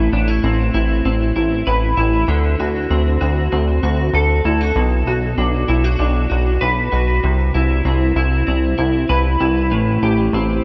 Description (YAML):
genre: dream pop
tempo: 97 BPM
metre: 4/4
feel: straight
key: unclear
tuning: A4 = 440 Hz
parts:
  - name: clean electric guitar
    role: arpeggios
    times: 0.0-10.6 s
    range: A2 to B4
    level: -20 LUFS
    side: equal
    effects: analog chorus, digital delay
  - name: chorused synth bass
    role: bass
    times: 0.0-10.6 s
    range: A1 to D2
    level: -20 LUFS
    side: equal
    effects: none
room: moderate huge ambient reverb, RT60 7.2 s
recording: none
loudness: -17 LUFS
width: mono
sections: 0.0-10.6 A section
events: none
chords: 0.0 Amadd9; 2.3 D7; 4.8 Bm; 7.2 Cmaj7; 9.7 Am7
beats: 0.43 1.05 1.67 | 2.29 2.91 3.52 4.14 | 4.76 5.38 6.00 6.62 | 7.24 7.86 8.47 9.09 | 9.71 10.33